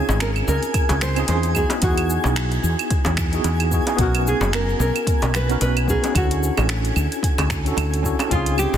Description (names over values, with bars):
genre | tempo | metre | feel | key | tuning
sunset chillout | 111 BPM | 4/4 | swing 57% on 16ths | unclear | A4 = 439 Hz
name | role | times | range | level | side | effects
nylon-string guitar | melody | 0.0-8.8 s | E#4 to B#4 | -26 LUFS | equal | ping-pong delay
tine electric piano | accompaniment | 0.0-8.8 s | B3 to A#4 | -25 LUFS | moving between left 3 dB and right 4 dB | medium stereo tremolo, auto-pan, digital delay
twinkling granular texture | texture | 0.0-8.8 s | G#5 | -31 LUFS | right 1 dB | built-in reverb
woody fretless electric bass | bass | 0.1-8.8 s | F#1 to E2 | -22 LUFS | equal | lush chorus
deep house drum kit | drums | 0.1-8.8 s | cabasa, claves, finger snaps, hi-hat | -27 LUFS | right 2 dB | studio reverb, soft clipping on snare
bongos | percussion | 0.1-8.8 s | none | -30 LUFS | equal | none
electronic kick drum | drums | 0.7-8.4 s | none | -23 LUFS | equal | studio reverb
room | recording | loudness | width
light reverb | dense, heavily limited modern master | -18 LUFS | side -10 dB against mid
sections
0.0-8.8 A section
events
none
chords
0.0 C#maj9; 1.6 Emaj9; 4.0 Bmaj9; 6.2 Dmaj9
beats
0.21 0.75 1.29 | 1.83 2.37 2.91 3.45 | 3.99 4.53 5.07 5.61 | 6.15 6.69 7.24 7.78 | 8.32